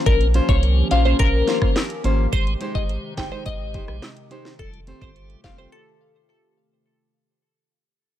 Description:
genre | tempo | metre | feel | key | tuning
dancehall | 106 BPM | 4/4 | straight | unclear | A4 = 441 Hz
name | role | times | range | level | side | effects
hollow soft pad | sustained chords | 0.0-6.8 s | C3 to G4 | -32 LUFS | equal | chorus, sidechain pumping
glassy wavetable pluck | melody | 0.1-6.1 s | A4 to G5 | -25 LUFS | left 5 dB | chorus, tape echo
tonewheel organ | accompaniment | 0.1-5.7 s | G3 to C5 | -30 LUFS | left 1 dB | slow rotary speaker
warm sub bass | bass | 0.1-5.7 s | F1 to C2 | -20 LUFS | equal | none
island pop drum kit | drums | 0.1-5.6 s | handclaps, hi-hat, kick drum, rim click, snare drum | -22 LUFS | equal | vintage 12-bit sampler grit
nylon-string guitar | arpeggios | 0.3-5.7 s | Ab3 to C5 | -28 LUFS | left 1 dB | none
room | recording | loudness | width
little or no reverb | none | -18 LUFS | side -12 dB against mid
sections
0.0-6.9 A section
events
fade-out 0.0-6.9; break 5.7-6.9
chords
0.0 Bbmadd9; 2.3 Abmaj7; 4.6 Fadd9

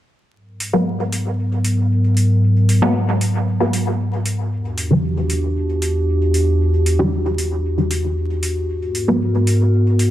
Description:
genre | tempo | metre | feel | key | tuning
dub techno | 115 BPM | 4/4 | straight | unclear | A4 = 436 Hz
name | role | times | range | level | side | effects
warbly tape-like pad | sustained chords | 0.7-10.1 s | E2 to A#4 | -17 LUFS | equal | chorus, built-in reverb
electronic hi-hat | drums | 0.6-10.1 s | none | -26 LUFS | right 1 dB | overdrive, studio reverb
filtered dub chord stab | stabs | 0.7-9.2 s | D3 to B3 | -20 LUFS | equal | phaser, cassette tape, dub echo
room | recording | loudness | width
wet echo chamber reverb, RT60 1.3 s, digital ambience | echo-heavy mix, vinyl crackle | -16 LUFS | side -13 dB against mid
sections
0.3-10.1 A section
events
filter sweep on synth stab 0.3-10.1; filter sweep on ambient pad 0.3-10.1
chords
0.3 G#m9; 4.5 Em9; 8.7 G#m9

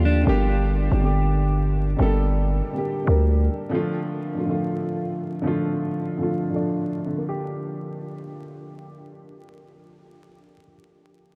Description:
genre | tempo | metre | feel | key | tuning
hip hop, trap | 139 BPM | 4/4 | half-time | G minor | A4 = 441 Hz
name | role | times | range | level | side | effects
dark baby grand piano | accompaniment | 0.0-11.4 s | D3 to Bb4 | -28 LUFS | equal | subtle chorus, low-pass filter
growling 808-style bass | bass | 0.0-3.5 s | G1 to Eb2 | -22 LUFS | equal | none
room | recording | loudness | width
moderate huge ambient reverb, RT60 7.9 s | dreamy mix soaked in reverb, vinyl crackle | -24 LUFS | mono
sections
0.3-7.2 A section; 7.2-10.6 B section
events
filter sweep on grand piano 0.3-7.2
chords
0.3 Gm; 3.7 Dm; 7.2 Gm

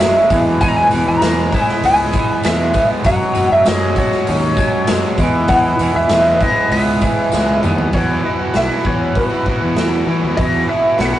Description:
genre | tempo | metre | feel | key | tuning
psychedelic rock | 98 BPM | 4/4 | straight | E major | A4 = 444 Hz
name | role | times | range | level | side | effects
lightly driven lead guitar | melody | 0.0-11.2 s | B4 to A#5 | -17 LUFS | equal | wah
hand-pumped harmonium | sustained chords | 0.0-11.2 s | E3 to F#5 | -22 LUFS | right 2 dB | none
crunchy overdriven guitar | riff | 0.0-11.2 s | E3 to F#4 | -20 LUFS | equal | none
fuzz fingered electric bass | bass | 0.0-11.1 s | B1 to E3 | -19 LUFS | equal | overdrive
tanpura | drone | 0.0-11.2 s | E2 to E4 | -31 LUFS | equal | none
raw garage drum kit | drums | 0.0-11.1 s | hi-hat, kick drum, snare drum, toms | -20 LUFS | equal | none
tambourine | percussion | 0.0-7.8 s | none | -37 LUFS | left 4 dB | none
room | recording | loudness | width
wet booth ambience, RT60 0.2 s | rough rehearsal-room recording, tube saturation, nothing above 10.4 kHz | -13 LUFS | side -13 dB against mid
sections
0.0-7.9 A section; 7.9-11.2 B section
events
drum fill 7.3-7.9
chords
0.3 E; 3.1 F#sus2; 5.2 E; 7.9 Esus2

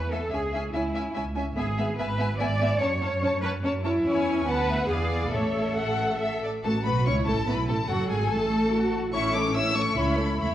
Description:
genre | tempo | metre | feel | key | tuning
quick classical-period movement for string orchestra | 144 BPM | 3/4 | rubato | A major | A4 = 443 Hz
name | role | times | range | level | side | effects
rich chamber violin section | melody | 0.0-10.5 s | E5 to E6 | -32 LUFS | left 3 dB | none
rich symphonic cello section | bass | 0.0-10.5 s | C#4 to D5 | -29 LUFS | right 1 dB | none
warm chamber double bass section | bass | 0.0-10.5 s | F#1 to F#2 | -29 LUFS | right 1 dB | none
rich chamber violin section | second line | 0.1-10.5 s | F#4 to F#5 | -31 LUFS | left 2 dB | none
warm studio viola section | accompaniment | 0.1-10.5 s | F#3 to E4 | -31 LUFS | equal | none
room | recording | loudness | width
wet recital hall reverb, RT60 1.4 s | worn, warbling old tape, cassette tape, warbly pitch drift | -23 LUFS | side -12 dB against mid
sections
0.0-6.6 A section; 6.6-10.5 B section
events
none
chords
0.3 C#m; 1.6 E/G#; 2.8 F#m; 4.0 C#m/E; 4.5 Bm7/D; 4.9 E7b9; 5.3 A; 7.9 F#madd9; 9.1 A; 10.0 A/C#

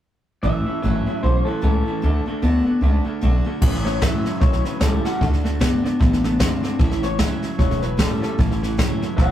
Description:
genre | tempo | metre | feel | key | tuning
rockabilly | 151 BPM | 4/4 | swing 60% on 8ths | A major | A4 = 440 Hz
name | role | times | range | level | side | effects
electric guitar through a small old amp | melody | 0.4-9.3 s | F#4 to F#5 | -28 LUFS | left 1 dB | spring reverb
picked steel-string acoustic guitar | accompaniment | 0.4-9.3 s | A2 to F#4 | -27 LUFS | left 2 dB | none
electric guitar through a small old amp | riff | 0.4-9.3 s | A2 to C4 | -25 LUFS | right 1 dB | spring reverb
upright bass | bass | 0.4-9.3 s | E1 to D2 | -21 LUFS | equal | none
jazz brush drum kit | drums | 3.6-9.3 s | crash cymbal, hi-hat, kick drum, snare drum | -20 LUFS | equal | none
room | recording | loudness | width
light reverb | rough rehearsal-room recording, tube saturation | -18 LUFS | side -11 dB against mid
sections
0.4-3.6 A section; 3.6-9.3 B section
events
none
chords
0.4 A; 2.0 D; 3.6 A; 5.2 D; 6.8 A

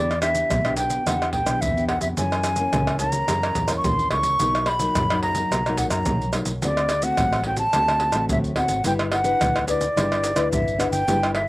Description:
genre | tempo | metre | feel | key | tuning
samba and choro | 108 BPM | 4/4 | straight | G major | A4 = 440 Hz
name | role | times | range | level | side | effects
bright baroque flute | melody | 0.0-11.5 s | D5 to C#6 | -22 LUFS | equal | slapback echo
nylon-string guitar | accompaniment | 0.0-11.5 s | F#2 to B4 | -27 LUFS | left 2 dB | none
vintage muted fingered electric bass | bass | 0.0-11.5 s | G1 to F#2 | -29 LUFS | equal | none
maracas, pandeiro, tamborim and surdo | percussion | 0.1-11.5 s | none | -25 LUFS | right 1 dB | none
room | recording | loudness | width
little or no reverb | recorded outdoors, with no room sound | -19 LUFS | side -19 dB against mid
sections
0.0-11.5 A section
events
none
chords
0.0 Em7; 2.2 F#7; 4.4 Bmaj7; 6.6 D7; 8.9 G6

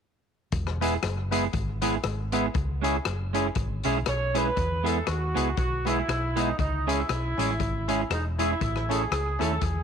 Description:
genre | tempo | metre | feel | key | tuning
ska | 119 BPM | 4/4 | swing 57% on 8ths | E major | A4 = 441 Hz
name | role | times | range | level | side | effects
hollow-body short-scale fingered electric bass | bass | 0.5-9.8 s | E1 to E2 | -30 LUFS | equal | none
crunchy breakbeat drum kit | drums | 0.5-9.8 s | hi-hat, kick drum, rim click | -32 LUFS | left 4 dB | tape echo
clean electric guitar | accompaniment | 0.8-9.5 s | G#3 to A4 | -31 LUFS | right 14 dB | none
percussive tonewheel organ | stabs | 0.8-9.5 s | B3 to A4 | -32 LUFS | left 12 dB | overdrive
mellow horn section | melody | 4.1-9.8 s | D#4 to C#5 | -30 LUFS | right 2 dB | none
room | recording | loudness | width
light reverb, studio reverb | 1960s-style stereo with parts hard left and right | -24 LUFS | side -7 dB against mid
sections
0.5-4.6 A section; 4.6-9.8 B section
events
none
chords
0.5 E; 2.5 C#m; 4.6 E; 6.6 C#m; 8.6 A

